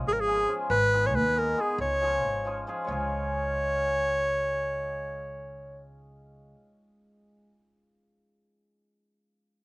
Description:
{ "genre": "balkan folk, Balkan wedding band", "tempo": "274 BPM (eighths)", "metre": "5/8", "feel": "straight", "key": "Db mixolydian", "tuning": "A4 = 439 Hz", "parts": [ { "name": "cimbalom", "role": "accompaniment", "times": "0.0-7.4 s", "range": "Eb3 to Ab4", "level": "-35 LUFS", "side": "left 1 dB", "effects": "slapback echo" }, { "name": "upright bass", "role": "bass", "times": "0.0-6.5 s", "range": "Ab1 to Eb2", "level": "-33 LUFS", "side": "equal", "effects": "none" }, { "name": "clear clarinet", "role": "melody", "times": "0.1-5.8 s", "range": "Ab4 to Db5", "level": "-26 LUFS", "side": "equal", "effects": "none" } ], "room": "little or no reverb", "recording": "recorded outdoors, with no room sound, nothing above 10.6 kHz", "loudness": "-25 LUFS", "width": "side -24 dB against mid", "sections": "0.0-2.9 A section; 2.9-5.1 B section", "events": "none", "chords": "0.0 Db; 0.7 Abm; 1.8 Db", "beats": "0.04 0.26 0.47 | 0.69 0.91 1.13 1.35 1.57 | 1.79 2.01 2.23 2.44 2.66 | 2.88 3.10 3.32 3.54 3.76 | 3.98 4.20 4.42 4.64 4.86" }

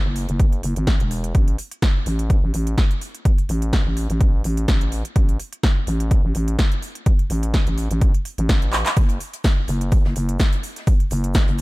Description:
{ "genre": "bass house", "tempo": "126 BPM", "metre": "4/4", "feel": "swing 55% on 16ths", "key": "unclear", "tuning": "A4 = 442 Hz", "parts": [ { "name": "growling FM bass", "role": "bass", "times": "0.0-11.6 s", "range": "E1 to A1", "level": "-22 LUFS", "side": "equal", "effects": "sidechain pumping" }, { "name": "big-room dance drum kit", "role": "drums", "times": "0.2-11.6 s", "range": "handclaps, hi-hat, snare drum", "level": "-26 LUFS", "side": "equal", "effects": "none" }, { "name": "electronic kick drum", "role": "drums", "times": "0.4-11.5 s", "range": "none", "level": "-17 LUFS", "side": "equal", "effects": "none" }, { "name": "natural country drum kit", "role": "drums", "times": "9.0-11.6 s", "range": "hi-hat, shaker, snare drum", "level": "-40 LUFS", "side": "left 1 dB", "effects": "sidechain pumping on hats, high-pass filter on hats, high-pass filter on snare, sidechain pumping on perc, high-pass filter on perc, high-pass filter on room" } ], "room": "little or no reverb", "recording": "dark, warm production", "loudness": "-18 LUFS", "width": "side -21 dB against mid", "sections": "0.0-11.6 A section", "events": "drum fill 8.7", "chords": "none", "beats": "0.40 0.87 | 1.35 1.82 2.30 2.78 | 3.25 3.73 4.21 4.68 | 5.16 5.63 6.11 6.59 | 7.06 7.54 8.02 8.49 | 8.97 9.44 9.92 10.40 | 10.87 11.35" }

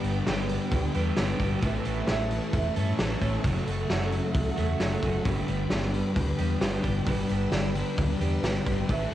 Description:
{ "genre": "rock, shoegaze and dream pop", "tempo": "132 BPM", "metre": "4/4", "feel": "straight", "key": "G lydian", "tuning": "A4 = 439 Hz", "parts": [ { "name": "string machine, violins", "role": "sustained chords", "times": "0.0-9.1 s", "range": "A4 to E6", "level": "-37 LUFS", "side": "right 1 dB", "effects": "ensemble chorus" }, { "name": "picked twelve-string acoustic guitar", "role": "arpeggios", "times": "0.0-9.1 s", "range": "E3 to A4", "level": "-37 LUFS", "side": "right 5 dB", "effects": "analog chorus, tape echo" }, { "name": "crunchy overdriven guitar", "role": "riff", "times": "0.0-9.1 s", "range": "F#2 to A4", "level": "-34 LUFS", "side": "right 7 dB", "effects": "reverse reverb" }, { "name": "thick fuzz guitar", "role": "riff", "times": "0.0-9.1 s", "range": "F#2 to A3", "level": "-31 LUFS", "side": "left 5 dB", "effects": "distortion, lush chorus" }, { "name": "fingered electric bass", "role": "bass", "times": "0.0-9.1 s", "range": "E1 to G2", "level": "-30 LUFS", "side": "equal", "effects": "none" }, { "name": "loose indie drum kit", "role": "drums", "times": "0.0-9.0 s", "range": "hi-hat, kick drum, snare drum", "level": "-30 LUFS", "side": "equal", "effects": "cassette tape" } ], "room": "light reverb", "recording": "home recording on cassette", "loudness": "-25 LUFS", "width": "side -13 dB against mid", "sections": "0.0-9.1 A section", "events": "none", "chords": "0.0 G; 1.6 Aadd9; 3.4 F#m; 5.3 G", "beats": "0.27 0.72 1.18 | 1.63 2.08 2.54 2.99 | 3.45 3.90 4.35 4.81 | 5.26 5.71 6.17 6.62 | 7.08 7.53 7.99 8.44 | 8.89" }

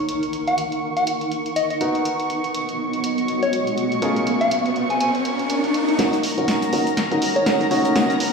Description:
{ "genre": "piano house", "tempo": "122 BPM", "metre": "4/4", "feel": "swing 58% on 16ths", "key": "Eb minor", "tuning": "A4 = 440 Hz", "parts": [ { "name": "analog string pad", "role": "sustained chords", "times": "0.0-8.3 s", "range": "Bb5 to Db6", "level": "-29 LUFS", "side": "right 1 dB", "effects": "ensemble chorus" }, { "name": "bright upright piano", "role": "riff", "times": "0.0-8.1 s", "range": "B3 to Db5", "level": "-23 LUFS", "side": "equal", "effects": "low-pass filter" }, { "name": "impact and riser", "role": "sound effects", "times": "3.4-8.3 s", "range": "none", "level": "-26 LUFS", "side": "left 1 dB", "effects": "none" }, { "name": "granular cloud pad", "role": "texture", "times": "0.0-8.3 s", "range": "B3 to Db6", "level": "-25 LUFS", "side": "right 1 dB", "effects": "built-in reverb" }, { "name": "punchy analog drum machine", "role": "drums", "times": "0.1-8.3 s", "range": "hi-hat, snare drum", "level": "-28 LUFS", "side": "equal", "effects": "none" }, { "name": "soft struck synth lead", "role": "melody", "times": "0.5-7.5 s", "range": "Db5 to Ab5", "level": "-25 LUFS", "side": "left 1 dB", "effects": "chorus, dub echo" }, { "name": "organ-like FM bass", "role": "bass", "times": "6.0-8.1 s", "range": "Bb1 to Eb2", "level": "-33 LUFS", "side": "left 1 dB", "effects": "none" }, { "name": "warm soul drum kit", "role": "drums", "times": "6.0-8.3 s", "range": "hi-hat, snare drum, tambourine", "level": "-36 LUFS", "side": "equal", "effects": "high-pass filter on hats, high-pass filter on snare, high-pass filter on perc, high-pass filter on room" } ], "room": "wet lush hall reverb, RT60 2.3 s", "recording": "played on a big sound system in a bare room, stone room reverb", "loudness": "-18 LUFS", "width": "side -4 dB against mid", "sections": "0.0-6.0 A section; 6.0-8.3 B section", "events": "filter sweep on analog synth pad 0.0-6.0; riser 3.4-6.0, 6.0-8.3; build-up 6.0-8.3; drum fill 6.0-8.3; filter sweep on upright piano 6.0-8.3", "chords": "0.0 Ebm7; 1.8 Bmaj7; 4.0 Bbm7; 6.0 Ebm7", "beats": "| 0.09 0.58 1.07 1.56 | 2.05 2.55 3.04 3.53 | 4.02 4.51 5.00 5.50 | 5.99 6.48 6.97 7.46 | 7.96" }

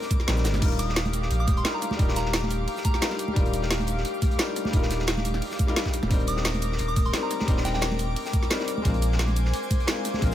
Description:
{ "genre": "liquid drum and bass", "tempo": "175 BPM", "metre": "4/4", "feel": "swing 53% on 16ths", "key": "Eb major", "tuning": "A4 = 438 Hz", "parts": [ { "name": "clear grand piano", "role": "accompaniment", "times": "0.0-10.3 s", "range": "G3 to Bb4", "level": "-32 LUFS", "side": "left 3 dB", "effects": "diffuse ambient delay" }, { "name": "airy breathy pad", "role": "sustained chords", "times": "0.0-10.3 s", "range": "G4 to D6", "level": "-33 LUFS", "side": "left 2 dB", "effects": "chorus" }, { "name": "crunchy breakbeat drum kit", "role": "drums", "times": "0.0-10.3 s", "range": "hi-hat, snare drum", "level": "-34 LUFS", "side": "equal", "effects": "high-pass filter on hats, high-pass filter on snare, high-pass filter on room" }, { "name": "drum and bass drum kit", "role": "drums", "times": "0.0-10.3 s", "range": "cabasa, crash cymbal, hi-hat, snare drum", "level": "-30 LUFS", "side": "equal", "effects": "none" }, { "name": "electronic kick drum", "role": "drums", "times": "0.1-10.3 s", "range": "none", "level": "-24 LUFS", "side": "equal", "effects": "none" }, { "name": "congas", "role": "percussion", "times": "0.1-10.2 s", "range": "none", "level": "-34 LUFS", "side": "right 1 dB", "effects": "none" }, { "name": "saturated sub bass", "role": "bass", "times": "0.3-10.3 s", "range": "Eb1 to Bb1", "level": "-27 LUFS", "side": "equal", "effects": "tube saturation" }, { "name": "soft synth bell", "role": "melody", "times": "0.8-3.1, 6.3-8.1 s", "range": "G5 to Eb6", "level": "-34 LUFS", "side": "equal", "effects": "chorus, vintage 12-bit sampler grit, ping-pong delay" } ], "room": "light reverb, small room ambience", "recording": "none", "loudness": "-22 LUFS", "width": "side -12 dB against mid", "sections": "0.0-10.3 A section", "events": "kick drops out 0.3-0.6", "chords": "0.0 Cm9; 0.6 Ebmaj9; 5.9 Cm9/Eb; 8.8 Bb9", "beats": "0.28 | 0.62 0.96 1.31 1.65 | 1.99 2.34 2.68 3.02 | 3.36 3.71 4.05 4.39 | 4.74 5.08 5.42 5.76 | 6.11 6.45 6.79 7.14 | 7.48 7.82 8.16 8.51 | 8.85 9.19 9.54 9.88 | 10.22" }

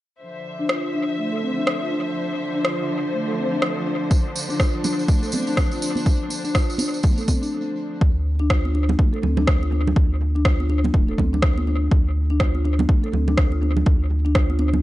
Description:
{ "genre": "afro house", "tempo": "123 BPM", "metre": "4/4", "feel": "swing 59% on 16ths", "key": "D minor", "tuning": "A4 = 442 Hz", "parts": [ { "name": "muted studio string section", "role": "sustained chords", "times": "0.2-8.0 s", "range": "D3 to E5", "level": "-29 LUFS", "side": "left 1 dB", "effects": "sidechain pumping" }, { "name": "marimba with soft mallets", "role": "arpeggios", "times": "0.6-14.7 s", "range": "A3 to A4", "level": "-26 LUFS", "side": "left 1 dB", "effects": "sidechain pumping, low-pass filter, dub echo" }, { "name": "electronic rim click", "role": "drums", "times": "0.7-14.5 s", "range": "none", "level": "-26 LUFS", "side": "equal", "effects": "overdrive, dub echo" }, { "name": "electronic kick drum", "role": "drums", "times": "4.1-14.5 s", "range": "none", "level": "-18 LUFS", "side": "equal", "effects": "none" }, { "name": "congas", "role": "percussion", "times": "4.1-14.8 s", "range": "none", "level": "-28 LUFS", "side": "right 3 dB", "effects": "dub echo" }, { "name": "tambourine", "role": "percussion", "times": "4.1-7.5 s", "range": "none", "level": "-31 LUFS", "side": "right 3 dB", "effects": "dub echo" }, { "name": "round analog bass", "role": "bass", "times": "8.0-14.8 s", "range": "D1 to D2", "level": "-21 LUFS", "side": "equal", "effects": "sidechain pumping" } ], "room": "light reverb", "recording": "echo-heavy mix, nothing above 10.9 kHz", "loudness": "-18 LUFS", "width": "side -16 dB against mid", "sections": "0.2-8.0 A section; 8.0-14.8 B section", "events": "filter sweep on marimba 0.2-8.0; break 7.5-8.0", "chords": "0.2 Dm9; 8.0 Dm", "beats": "| 0.21 0.69 1.18 1.67 | 2.16 2.65 3.13 3.62 | 4.11 4.60 5.09 5.57 | 6.06 6.55 7.04 7.53 | 8.01 8.50 8.99 9.48 | 9.96 10.45 10.94 11.43 | 11.91 12.40 12.89 13.38 | 13.87 14.35" }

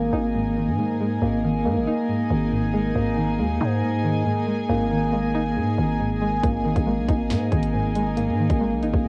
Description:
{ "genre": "hip hop, drill", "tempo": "138 BPM", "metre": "4/4", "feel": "half-time", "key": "unclear", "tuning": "A4 = 439 Hz", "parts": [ { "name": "string-like resonator pluck", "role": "accompaniment", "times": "0.0-9.1 s", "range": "G#2 to D#4", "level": "-29 LUFS", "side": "equal", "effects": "chorus, cassette tape" }, { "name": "warm symphonic string section", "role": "sustained chords", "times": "0.0-9.1 s", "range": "D#4 to G#5", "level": "-32 LUFS", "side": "equal", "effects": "cassette tape" }, { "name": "mellow tine electric piano", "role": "arpeggios", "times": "0.0-9.1 s", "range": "A#3", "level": "-27 LUFS", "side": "equal", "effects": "cassette tape, tape echo" }, { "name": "growling 808-style bass", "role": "bass", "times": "0.0-9.1 s", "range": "G#1 to G#2", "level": "-29 LUFS", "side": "equal", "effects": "none" }, { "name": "drill drum kit", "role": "drums", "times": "6.4-9.0 s", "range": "finger snaps, hi-hat, kick drum, snare drum", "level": "-28 LUFS", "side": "equal", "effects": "cassette tape" } ], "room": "moderate small room reverb, RT60 0.6 s", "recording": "home recording on cassette", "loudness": "-23 LUFS", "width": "mono", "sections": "0.0-9.1 A section", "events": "none", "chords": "0.0 G#sus2", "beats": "0.35 0.78 | 1.22 1.65 2.09 2.52 | 2.96 3.39 3.83 4.26 | 4.70 5.13 5.57 6.00 | 6.43 6.87 7.30 7.74 | 8.17 8.61 9.04" }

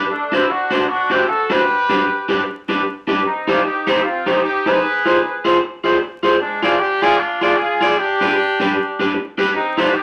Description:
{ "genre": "ska", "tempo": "152 BPM", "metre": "4/4", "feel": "swing 60% on 8ths", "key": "unclear", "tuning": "A4 = 439 Hz", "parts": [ { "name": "electric guitar at the edge of break-up", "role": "accompaniment", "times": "0.0-9.9 s", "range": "D4 to D5", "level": "-19 LUFS", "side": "equal", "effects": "dub echo" }, { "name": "warm horn section", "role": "melody", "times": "0.1-10.0 s", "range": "Ab3 to B4", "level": "-20 LUFS", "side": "equal", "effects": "none" } ], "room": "wet studio reverb, RT60 0.5 s", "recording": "vinyl crackle", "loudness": "-17 LUFS", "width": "mono", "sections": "0.0-10.0 A section", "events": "none", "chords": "0.1 D7; 1.7 G; 3.2 Cm; 4.8 Fm; 6.4 Ddim; 8.0 G", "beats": "| 0.08 0.48 0.87 1.27 | 1.66 2.06 2.45 2.84 | 3.24 3.63 4.03 4.42 | 4.82 5.21 5.61 6.00 | 6.39 6.79 7.18 7.58 | 7.97 8.37 8.76 9.15 | 9.55 9.94" }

